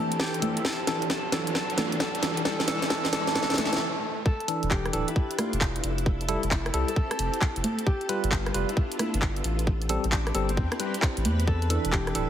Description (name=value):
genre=UK garage, two-step garage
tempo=133 BPM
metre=4/4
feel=swing 65% on 16ths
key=A minor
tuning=A4 = 439 Hz
part: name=Celtic harp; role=melody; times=0.0-12.3 s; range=C4 to A4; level=-34 LUFS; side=left 2 dB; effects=digital delay
part: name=soft string machine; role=sustained chords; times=0.0-12.3 s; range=B3 to B4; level=-37 LUFS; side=equal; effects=ensemble chorus, sidechain pumping
part: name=tine electric piano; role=stabs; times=0.0-12.3 s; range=E3 to B4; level=-30 LUFS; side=equal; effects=medium stereo tremolo
part: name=saturated sub bass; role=bass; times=0.0-12.3 s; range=D1 to E2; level=-28 LUFS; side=equal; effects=high-pass filter
part: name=riser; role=sound effects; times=0.0-3.8 s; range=none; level=-34 LUFS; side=right 1 dB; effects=none
part: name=garage drum kit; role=drums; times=0.1-12.3 s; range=congas, handclaps, hi-hat, rim click, snare drum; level=-29 LUFS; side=equal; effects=none
part: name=electronic kick drum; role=drums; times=0.2-12.0 s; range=none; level=-26 LUFS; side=equal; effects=high-pass filter on kick
room=moderate digital room reverb, RT60 1.3 s, digital ambience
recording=heavily compressed radio sound, multiband compression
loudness=-24 LUFS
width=side -10 dB against mid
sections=0.0-4.3 A section; 4.3-12.3 B section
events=build-up 0.0-4.3; drum fill 0.0-3.8; riser 0.0-3.8; stop 3.8-4.3; drop 4.3-12.3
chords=0.0 Fmaj9 (rootless); 0.6 G7; 2.5 Am7; 4.3 E7sus4; 6.1 Fmaj9; 7.9 G7; 9.7 Am7; 11.5 E7sus4